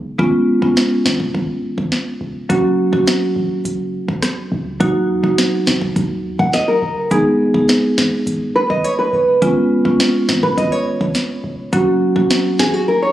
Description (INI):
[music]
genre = dancehall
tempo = 104 BPM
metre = 4/4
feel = straight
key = unclear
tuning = A4 = 439 Hz
[part]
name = clean 808-style bass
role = bass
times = 0.0-12.7 s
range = E1 to D#2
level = -26 LUFS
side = equal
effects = none
[part]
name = marimba with medium mallets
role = accompaniment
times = 0.2-12.3 s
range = F#3 to G#4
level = -16 LUFS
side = right 1 dB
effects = none
[part]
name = afro-pop drum kit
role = drums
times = 0.2-12.7 s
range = hi-hat, kick drum, rim click, snare drum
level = -19 LUFS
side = equal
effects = none
[part]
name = nylon-string guitar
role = arpeggios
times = 6.4-13.1 s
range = F#4 to F#5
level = -16 LUFS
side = equal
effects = digital delay
[sound]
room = light reverb, small room ambience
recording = recorded on a phone in the room, club reverb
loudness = -14 LUFS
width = side -13 dB against mid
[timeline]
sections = 0.0-13.1 A section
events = drums muted 12.9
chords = 0.2 C#7; 2.5 F#; 4.8 D#m; 7.1 G#m; 9.4 C#7; 11.7 F#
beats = | 0.19 0.77 1.34 1.92 | 2.50 3.07 3.65 4.23 | 4.80 5.38 5.96 6.54 | 7.11 7.69 8.27 8.84 | 9.42 10.00 10.57 11.15 | 11.73 12.30 12.88